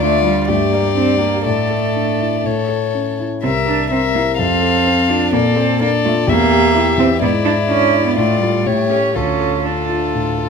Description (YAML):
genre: quick classical-period movement for piano quartet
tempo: 125 BPM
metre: 4/4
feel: straight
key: D minor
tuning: A4 = 443 Hz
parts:
  - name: warm violin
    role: melody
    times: 0.0-10.5 s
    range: A4 to F5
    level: -19 LUFS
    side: left 8 dB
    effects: none
  - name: dark violin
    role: second line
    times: 0.0-10.5 s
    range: E4 to Bb4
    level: -22 LUFS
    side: left 4 dB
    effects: none
  - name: warm cello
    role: second line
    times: 0.0-10.5 s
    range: G3 to D4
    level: -19 LUFS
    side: right 8 dB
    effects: none
  - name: dark concert grand piano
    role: accompaniment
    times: 0.0-10.5 s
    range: C2 to D5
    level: -18 LUFS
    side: left 1 dB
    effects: none
room: moderate recital hall reverb, RT60 1.6 s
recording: close, detailed microphones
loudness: -13 LUFS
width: side -6 dB against mid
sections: 0.0-10.5 A section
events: none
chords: 0.5 G5; 1.5 Asus4; 2.5 A; 3.4 C7; 4.4 F; 5.3 Bbmaj7; 6.3 Edim; 7.2 E7/G#; 8.2 Dm/A; 8.7 A7; 9.1 Dm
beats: 0.02 0.49 0.96 | 1.46 1.96 2.45 2.94 | 3.43 3.92 4.39 4.87 | 5.34 5.81 6.28 6.75 | 7.23 7.70 8.17 8.66 | 9.15 9.64 10.14